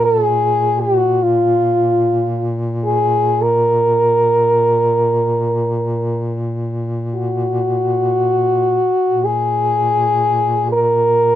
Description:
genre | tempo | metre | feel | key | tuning
caucasian folk, Caucasian lament | free time | none | none | unclear | A4 = 439 Hz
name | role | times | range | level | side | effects
warm French horn | melody | 0.0-11.4 s | F4 to Bb4 | -14 LUFS | equal | none
mellow duduk | drone | 0.0-11.4 s | Bb2 | -21 LUFS | equal | none
room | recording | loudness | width
little or no reverb | close, detailed microphones | -14 LUFS | side -12 dB against mid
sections
0.0-11.4 A section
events
none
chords
none

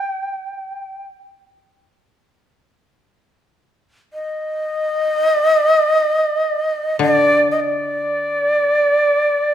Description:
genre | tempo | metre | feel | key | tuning
japanese traditional, Japanese chamber music | free time | none | none | unclear | A4 = 439 Hz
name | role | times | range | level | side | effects
bright reedy shakuhachi | melody | 0.0-9.5 s | D5 to G5 | -16 LUFS | equal | none
koto | accompaniment | 0.0-9.5 s | D3 to G3 | -22 LUFS | left 4 dB | none
room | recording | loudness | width
wet recital hall reverb, RT60 1.4 s | recorded in a church or concert hall | -15 LUFS | side -10 dB against mid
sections
0.0-2.4 A section; 2.4-9.5 B section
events
none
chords
none

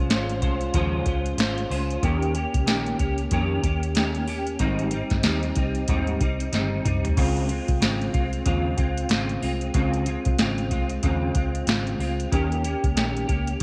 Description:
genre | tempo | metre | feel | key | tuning
indie pop, bedroom pop | 93 BPM | 4/4 | swing 60% on 16ths | Db lydian | A4 = 443 Hz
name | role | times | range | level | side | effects
clean electric guitar | accompaniment | 0.0-13.6 s | Ab2 to C5 | -28 LUFS | equal | ensemble chorus, vibrato effect
vintage muted fingered electric bass | bass | 0.0-13.5 s | G1 to F2 | -30 LUFS | equal | none
soft vintage rhythm box | drums | 0.1-13.6 s | crash cymbal, hi-hat, kick drum, snare drum, toms | -28 LUFS | equal | overdrive
room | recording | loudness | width
little or no reverb | none | -24 LUFS | mono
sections
0.0-13.6 A section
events
drum fill 6.5-7.2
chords
0.0 Dbmaj7; 2.0 Eb7; 4.6 Abmaj7; 7.2 Dbmaj7; 12.3 Eb7

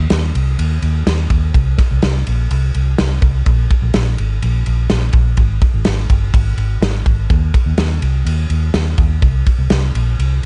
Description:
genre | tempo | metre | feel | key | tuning
jangly indie pop | 125 BPM | 4/4 | straight | C minor | A4 = 440 Hz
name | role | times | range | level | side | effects
vintage muted fingered electric bass | bass | 0.0-10.5 s | G1 to Eb2 | -18 LUFS | equal | none
loose indie drum kit | drums | 0.1-10.5 s | kick drum, ride cymbal, snare drum | -19 LUFS | equal | none
room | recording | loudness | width
little or no reverb | vinyl crackle, nothing above 10.7 kHz | -15 LUFS | mono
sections
0.0-10.5 A section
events
none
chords
none

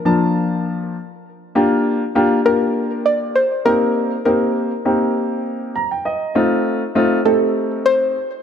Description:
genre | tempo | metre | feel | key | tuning
dance-pop | 100 BPM | 4/4 | straight | unclear | A4 = 443 Hz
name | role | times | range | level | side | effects
soft round pluck | melody | 0.0-8.4 s | A4 to D5 | -18 LUFS | equal | chorus
warm baby grand piano | accompaniment | 0.1-8.1 s | F3 to Bb5 | -17 LUFS | left 1 dB | none
room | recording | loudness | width
moderate plate reverb, RT60 3.1 s | dark, warm production | -15 LUFS | side -8 dB against mid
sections
0.0-8.4 A section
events
grand piano fill 5.5-6.4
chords
0.0 Bbmaj7/F; 1.6 Gm7; 3.7 Cm7; 6.4 F7

